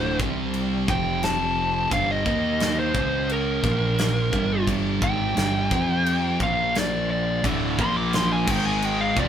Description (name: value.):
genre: stoner and doom metal.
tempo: 87 BPM.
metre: 4/4.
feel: straight.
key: unclear.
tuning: A4 = 439 Hz.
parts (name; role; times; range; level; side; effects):
fuzz lead guitar; melody; 0.0-9.3 s; Bb4 to D6; -25 LUFS; equal; distortion.
overdriven tonewheel organ; sustained chords; 0.0-9.3 s; C3 to A5; -38 LUFS; equal; none.
thick fuzz guitar; riff; 0.0-9.3 s; D2 to F4; -29 LUFS; left 6 dB; distortion.
thick fuzz guitar; riff; 0.0-9.3 s; D2 to F4; -27 LUFS; right 6 dB; distortion.
growling fingered electric bass; bass; 0.0-9.3 s; D1 to F2; -30 LUFS; equal; overdrive.
big rock drum kit; drums; 0.2-9.3 s; crash cymbal, kick drum, snare drum; -28 LUFS; left 1 dB; none.
tight distorted guitar; riff; 7.4-9.3 s; D2 to Bb3; -27 LUFS; left 1 dB; distortion.
room: light reverb.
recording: band playing live in one room.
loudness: -20 LUFS.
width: side -9 dB against mid.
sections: 0.0-9.3 A section.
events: lead electric guitar solo 0.0-9.3.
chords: 0.2 C5; 0.9 F5; 1.9 G5; 2.3 Eb5; 3.0 C#5; 3.6 Bb5; 4.3 G5; 5.7 F5; 6.4 Bb5; 7.4 D5; 7.8 Bb5; 8.5 G#5.